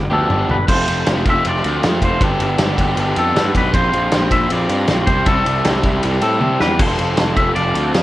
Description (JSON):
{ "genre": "indie rock", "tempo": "157 BPM", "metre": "4/4", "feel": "straight", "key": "unclear", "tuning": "A4 = 441 Hz", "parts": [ { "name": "twangy electric guitar", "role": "melody", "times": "0.0-7.9 s", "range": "A4 to E5", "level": "-20 LUFS", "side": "left 1 dB", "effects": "slapback echo" }, { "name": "fuzz picked electric bass", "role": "bass", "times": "0.0-8.0 s", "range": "F1 to C3", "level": "-20 LUFS", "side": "equal", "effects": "overdrive" }, { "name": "crunchy overdriven guitar", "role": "riff", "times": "0.1-8.0 s", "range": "F3 to A4", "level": "-20 LUFS", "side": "equal", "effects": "none" }, { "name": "loose indie drum kit", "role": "drums", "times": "0.1-8.0 s", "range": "crash cymbal, kick drum, ride cymbal, snare drum, toms", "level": "-19 LUFS", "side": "equal", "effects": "none" } ], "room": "light reverb", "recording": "worn, warbling old tape, cassette tape, warbly pitch drift", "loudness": "-14 LUFS", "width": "side -15 dB against mid", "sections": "0.7-8.0 A section", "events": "drum fill 0.0-0.7, 6.4-6.8", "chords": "0.0 G7; 0.7 F; 2.2 Gadd9; 3.7 Bbsus2; 5.1 C; 6.8 F" }